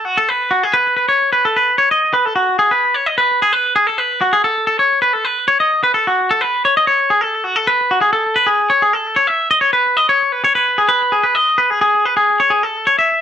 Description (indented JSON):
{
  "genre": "rock",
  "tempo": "130 BPM",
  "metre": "4/4",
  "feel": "straight",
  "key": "unclear",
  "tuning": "A4 = 440 Hz",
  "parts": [
    { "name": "twangy electric guitar", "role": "solo", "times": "0.0-13.2 s", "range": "F#4 to E5", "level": "-12 LUFS", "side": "equal", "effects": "slapback echo" }
  ],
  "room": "light reverb",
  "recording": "dark, warm production",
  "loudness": "-12 LUFS",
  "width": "side -9 dB against mid",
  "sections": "0.0-8.1 A section; 8.1-13.2 B section",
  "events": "none",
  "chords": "none",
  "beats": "0.29 | 0.75 1.21 1.67 2.13 | 2.60 3.06 3.52 3.98 | 4.44 4.90 5.36 5.83 | 6.29 6.75 7.21 7.67 | 8.13 8.59 9.05 9.52 | 9.98 10.44 10.90 11.36 | 11.82 12.28 12.74 13.21"
}